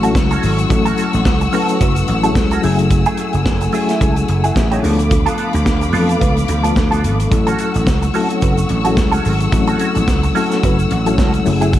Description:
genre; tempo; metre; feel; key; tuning
disco; 109 BPM; 4/4; swing 56% on 16ths; A major; A4 = 440 Hz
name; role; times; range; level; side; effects
clean electric guitar; accompaniment; 0.0-11.8 s; A3 to B4; -22 LUFS; right 4 dB; wah, ensemble chorus
mellow reed electric piano; accompaniment; 0.0-11.8 s; E3 to F#5; -19 LUFS; left 5 dB; fast tremolo
warm studio string section; sustained chords; 0.0-11.8 s; A3 to E6; -23 LUFS; left 1 dB; none
vintage slap bass; bass; 0.0-11.8 s; F#1 to F2; -17 LUFS; right 1 dB; none
modern studio drum kit; drums; 0.0-11.8 s; hi-hat, kick drum, snare drum; -19 LUFS; right 1 dB; none
egg shaker; percussion; 0.0-11.8 s; none; -37 LUFS; right 9 dB; none
room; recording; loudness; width
light reverb, studio ambience; dark, warm production; -13 LUFS; side -12 dB against mid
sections
0.0-11.8 A section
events
none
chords
0.0 A6; 2.6 F#m9; 4.8 Dm6; 7.3 A6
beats
0.15 | 0.70 1.25 1.80 2.35 | 2.90 3.46 4.01 4.56 | 5.11 5.66 6.21 6.77 | 7.32 7.87 8.42 8.97 | 9.53 10.08 10.63 11.18 | 11.73

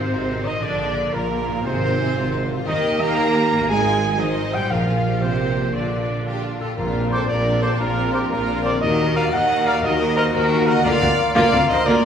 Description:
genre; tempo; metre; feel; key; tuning
cinematic; 118 BPM (dotted quarters); 6/8; straight; Bb major from 6.8 s; A4 = 440 Hz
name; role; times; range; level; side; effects
rich symphonic violin section; melody; 0.0-12.1 s; D4 to Bb5; -30 LUFS; left 3 dB; none
rich symphonic violin section; second line; 0.0-12.1 s; D4 to Eb5; -30 LUFS; left 2 dB; none
rich symphonic viola section; accompaniment; 0.0-12.0 s; D3 to Bb4; -27 LUFS; right 1 dB; none
concert harp; arpeggios; 0.0-12.1 s; Ab2 to Eb5; -31 LUFS; left 2 dB; none
warm trumpet; stabs; 0.0-12.1 s; F4 to Bb5; -23 LUFS; right 2 dB; none
bright symphonic cello section; bass; 0.0-11.9 s; Bb2 to Bb3; -26 LUFS; right 1 dB; none
rich symphonic double bass section; bass; 0.0-11.9 s; Ab1 to Eb2; -27 LUFS; right 1 dB; none
warm tuba; bass; 0.0-11.9 s; Ab1 to Eb2; -27 LUFS; right 1 dB; none
timpani; percussion; 4.7-7.3 s; Bb2; -29 LUFS; left 1 dB; none
mellow clarinet; second line; 6.3-12.1 s; F4 to Gb5; -27 LUFS; left 2 dB; none
dark French horn section; sustained chords; 6.8-12.1 s; Bb3 to Gb4; -28 LUFS; left 3 dB; none
hollow concert flute; second line; 7.1-12.1 s; C6 to F6; -31 LUFS; equal; none
mellow cor anglais; second line; 7.1-12.1 s; Bb4 to C5; -29 LUFS; left 2 dB; none
room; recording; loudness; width
wet recital hall reverb, RT60 1.6 s; recorded in a church or concert hall; -17 LUFS; side -8 dB against mid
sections
0.0-6.8 A section; 6.8-12.1 B section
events
none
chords
0.0 Ab; 0.6 Bbadd9; 1.6 Ab; 2.7 Eb; 3.7 Ab; 4.7 Bbadd9; 8.8 Ebmadd9; 10.9 Bbadd9/D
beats
0.11 | 0.62 1.14 | 1.65 2.16 | 2.67 3.18 | 3.69 4.20 | 4.71 5.22 | 5.74 6.26 | 6.78 7.29 | 7.81 8.32 | 8.82 9.33 | 9.84 10.34 | 10.85 11.36 | 11.87

